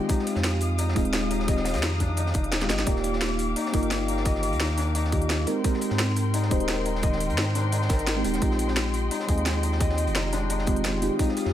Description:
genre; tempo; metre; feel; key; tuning
liquid drum and bass; 173 BPM; 4/4; straight; unclear; A4 = 436 Hz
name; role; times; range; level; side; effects
mellow FM electric piano; accompaniment; 0.0-11.5 s; Eb3 to D5; -28 LUFS; equal; chorus, phaser, tape echo
muted studio string section; sustained chords; 0.0-11.5 s; Ab3 to Eb6; -34 LUFS; left 2 dB; sidechain pumping
felt-muted upright piano; arpeggios; 0.0-11.3 s; D4 to Eb5; -33 LUFS; left 4 dB; tape echo
crunchy breakbeat drum kit; drums; 0.1-11.5 s; hi-hat, snare drum; -37 LUFS; equal; high-pass filter on hats, high-pass filter on snare, high-pass filter on room
drum and bass drum kit; drums; 0.1-11.4 s; hi-hat, snare drum; -30 LUFS; equal; none
electronic kick drum; drums; 0.1-11.3 s; none; -26 LUFS; equal; none
warm sub bass; bass; 0.4-11.5 s; Eb1 to Ab2; -28 LUFS; equal; tube saturation
room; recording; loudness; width
moderate recital hall reverb, RT60 1.7 s, small room reverb; none; -22 LUFS; side -11 dB against mid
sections
0.0-11.5 A section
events
drum fill 2.6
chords
0.1 Fm7; 2.9 Ebmaj9; 5.5 Abmaj9; 8.4 Bb13sus4

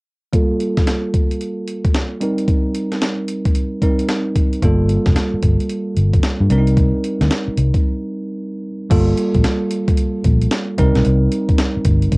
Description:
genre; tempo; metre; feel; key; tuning
R&B, new jack swing; 112 BPM; 4/4; swing 64% on 16ths; G minor; A4 = 443 Hz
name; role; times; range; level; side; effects
bell-like tine electric piano; accompaniment; 0.3-12.2 s; G3 to Bb4; -20 LUFS; right 1 dB; low-pass filter, cassette tape
breakbeat sampler-style drum kit; drums; 0.3-12.2 s; crash cymbal, hi-hat, kick drum, snare drum; -17 LUFS; equal; cassette tape
vintage muted fingered electric bass; bass; 4.6-12.2 s; F1 to G2; -16 LUFS; equal; none
room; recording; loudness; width
light reverb; home recording on cassette; -15 LUFS; side -27 dB against mid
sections
0.3-8.9 A section; 8.9-12.2 B section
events
break 7.8-8.9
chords
0.3 Gm9; 2.2 Cm7; 4.6 Gm9; 6.5 Cm7; 8.9 Gm9; 10.8 Cm7

